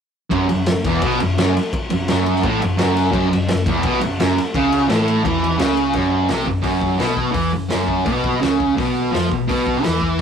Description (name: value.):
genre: garage rock duo or trio.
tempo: 170 BPM.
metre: 4/4.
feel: straight.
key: unclear.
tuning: A4 = 440 Hz.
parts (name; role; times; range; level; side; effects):
fuzz guitar; riff; 0.3-10.2 s; E2 to E#3; -17 LUFS; right 1 dB; distortion.
hollow-body short-scale picked electric bass; bass; 0.3-10.2 s; E1 to E#2; -25 LUFS; left 2 dB; none.
raw garage drum kit; drums; 0.3-10.2 s; crash cymbal, hi-hat, kick drum, ride cymbal, snare drum; -23 LUFS; left 1 dB; none.
room: moderate studio reverb, RT60 0.6 s.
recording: rough rehearsal-room recording, warm saturation.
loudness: -16 LUFS.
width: side -7 dB against mid.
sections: 0.3-6.0 A section; 6.0-10.2 B section.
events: none.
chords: 0.3 F#5; 8.8 B5.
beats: | 0.32 0.67 1.02 1.38 | 1.73 2.08 2.43 2.79 | 3.14 3.49 3.84 4.19 | 4.54 4.90 5.25 5.60 | 5.95 6.30 6.66 7.01 | 7.36 7.72 8.07 8.42 | 8.77 9.13 9.48 9.83 | 10.19.